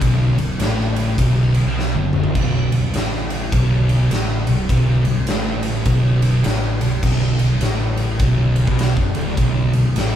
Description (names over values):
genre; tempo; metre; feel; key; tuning
stoner and doom metal; 102 BPM; 4/4; swing 62% on 8ths; B minor; A4 = 441 Hz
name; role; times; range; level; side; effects
thick fuzz guitar; riff; 0.0-10.2 s; B1 to B2; -17 LUFS; equal; distortion
growling picked electric bass; bass; 0.0-10.2 s; B0 to B1; -26 LUFS; equal; overdrive
big rock drum kit; drums; 0.0-10.1 s; crash cymbal, kick drum, ride cymbal, snare drum, toms; -21 LUFS; equal; none
room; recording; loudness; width
light reverb; band playing live in one room; -15 LUFS; side -10 dB against mid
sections
0.0-10.2 A section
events
drum fill 1.8-2.4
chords
none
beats
| 0.02 0.60 1.19 1.77 | 2.36 2.94 3.53 4.11 | 4.70 5.28 5.87 6.45 | 7.04 7.62 8.21 8.79 | 9.38 9.96